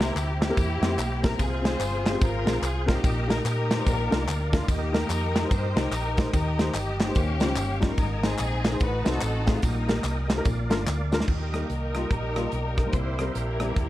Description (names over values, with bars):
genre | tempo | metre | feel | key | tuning
uptempo gospel | 146 BPM | 4/4 | swing 62% on 8ths | Eb major | A4 = 438 Hz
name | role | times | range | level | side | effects
clear studio string section | melody | 0.0-13.9 s | G3 to C5 | -31 LUFS | left 2 dB | none
warm upright piano | accompaniment | 0.0-13.7 s | Ab2 to C5 | -32 LUFS | left 2 dB | none
bright tonewheel organ | sustained chords | 0.0-13.9 s | G4 to Eb6 | -37 LUFS | right 3 dB | slow rotary speaker, chorus vibrato
hollow-body short-scale fingered electric bass | bass | 0.0-13.9 s | G1 to Bb2 | -28 LUFS | equal | none
modern studio drum kit | drums | 0.0-13.9 s | crash cymbal, hi-hat, kick drum, ride cymbal, rim click, snare drum | -27 LUFS | equal | none
tambourine and handclaps | percussion | 0.0-11.2 s | none | -38 LUFS | left 2 dB | none
warm French horn section | sustained chords | 11.3-13.9 s | G3 to G4 | -39 LUFS | right 1 dB | none
room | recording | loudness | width
light reverb, studio reverb | dark, warm production | -23 LUFS | side -15 dB against mid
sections
0.0-11.3 A section; 11.3-13.9 B section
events
drum fill 10.9-11.3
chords
0.0 C7; 1.4 Fm; 3.0 Eb/Bb; 3.9 Bb; 4.7 Eb; 6.3 Cm/Eb; 7.2 Eb9; 8.0 Ab; 8.8 Adim7; 9.6 Eb/Bb; 10.5 Bb; 11.3 Eb; 12.9 C7